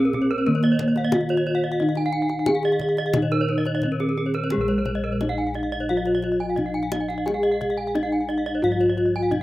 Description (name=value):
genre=Balinese gamelan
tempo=87 BPM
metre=4/4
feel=straight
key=Bb slendro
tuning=A4 = 444 Hz
part: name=gamelan-type bronze metallophone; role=melody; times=0.0-9.4 s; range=Ab3-45c to Ab4-45c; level=-22 LUFS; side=equal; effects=none
part: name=gamelan-type bronze metallophone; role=accompaniment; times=0.0-9.4 s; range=Eb3-35c to Bb3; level=-32 LUFS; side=equal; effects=none
part: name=gamelan-type bronze metallophone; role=arpeggios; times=0.0-9.2 s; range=Ab4-45c to Ab5-45c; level=-30 LUFS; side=right 5 dB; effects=slapback echo
part: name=gamelan-type bossed gongs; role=bass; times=0.0-9.4 s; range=Bb1 to Bb4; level=-30 LUFS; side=left 1 dB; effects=none
part: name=gamelan-type bronze metallophone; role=arpeggios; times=0.1-9.4 s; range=Ab4-45c to Ab5-45c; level=-31 LUFS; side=left 5 dB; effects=slapback echo
part: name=kendang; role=percussion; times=0.1-9.4 s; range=none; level=-31 LUFS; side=left 2 dB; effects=none
room=little or no reverb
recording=recorded outdoors, with no room sound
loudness=-20 LUFS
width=side -16 dB against mid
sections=0.0-4.5 A section; 4.5-9.4 B section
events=none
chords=none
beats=0.47 1.14 | 1.80 2.47 3.15 3.83 | 4.51 5.20 5.89 6.57 | 7.26 7.95 8.63 9.32